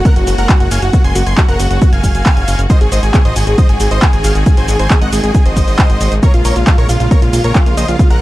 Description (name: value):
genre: uplifting trance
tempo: 136 BPM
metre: 4/4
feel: straight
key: unclear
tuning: A4 = 440 Hz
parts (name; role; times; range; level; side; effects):
- big supersaw lead; melody; 0.0-8.2 s; F4 to C6; -18 LUFS; equal; cassette tape, sidechain pumping, digital delay
- bright studio string section; sustained chords; 0.0-8.2 s; Db3 to Gb4; -23 LUFS; equal; sidechain pumping
- electronic kick drum; drums; 0.1-8.1 s; none; -10 LUFS; equal; none
- punchy analog drum machine; drums; 0.1-8.2 s; handclaps, hi-hat, shaker; -20 LUFS; right 1 dB; sidechain pumping on hats, sidechain pumping on cymbals, sidechain pumping on perc
- fat analog bass; bass; 0.2-8.2 s; Gb1 to Bb1; -14 LUFS; equal; sidechain pumping
room: digital ambience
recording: dark, warm production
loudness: -9 LUFS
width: side -16 dB against mid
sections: 0.0-8.2 A section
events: none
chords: 0.0 Gbadd9; 2.7 Ab7; 6.2 Bbm7